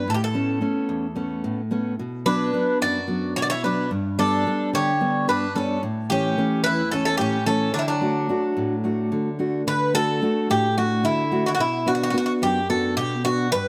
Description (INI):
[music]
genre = greek folk, Greek bouzouki band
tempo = 219 BPM (eighths)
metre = 7/8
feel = straight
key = D major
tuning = A4 = 440 Hz
[part]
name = Greek bouzouki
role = melody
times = 0.0-13.7 s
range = D4 to D5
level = -26 LUFS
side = equal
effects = none
[part]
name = fingerpicked steel-string acoustic guitar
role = accompaniment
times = 0.0-13.7 s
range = E2 to F#4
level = -26 LUFS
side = equal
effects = none
[part]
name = Greek bouzouki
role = second line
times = 2.3-9.4 s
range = F#3 to G4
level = -32 LUFS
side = equal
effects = none
[sound]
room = light reverb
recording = none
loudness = -23 LUFS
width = mono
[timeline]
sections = 0.0-9.7 A section; 9.7-13.7 B section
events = none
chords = 0.1 Aadd9; 2.0 Bm; 3.9 G; 5.8 A; 7.7 D; 11.6 Bm